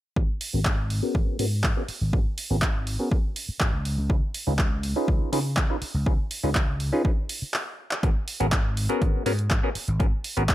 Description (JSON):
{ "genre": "filtered disco house", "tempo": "122 BPM", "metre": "4/4", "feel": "straight", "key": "G# dorian", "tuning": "A4 = 440 Hz", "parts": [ { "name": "mellow clav", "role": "accompaniment", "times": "0.2-10.4 s", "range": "B3 to B4", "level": "-28 LUFS", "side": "equal", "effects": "phaser, sidechain pumping, low-pass filter" }, { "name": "vintage slap bass", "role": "bass", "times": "0.2-10.5 s", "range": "G#1 to C#3", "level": "-27 LUFS", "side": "equal", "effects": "sidechain pumping, low-pass filter" }, { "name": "electronic kick drum", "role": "drums", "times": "0.2-10.5 s", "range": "none", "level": "-24 LUFS", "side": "equal", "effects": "overdrive" }, { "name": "punchy analog drum machine", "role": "drums", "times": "0.4-10.5 s", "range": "handclaps, hi-hat", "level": "-30 LUFS", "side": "right 1 dB", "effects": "overdrive, sidechain pumping on hats" } ], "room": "little or no reverb", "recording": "none", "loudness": "-23 LUFS", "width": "side -14 dB against mid", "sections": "0.2-8.0 A section; 8.0-10.5 B section", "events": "filter sweep 0.2-8.0; drum fill 7.5-8.0; stop 7.5-8.0", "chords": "0.2 G#m11; 3.9 C#9; 8.0 G#m11" }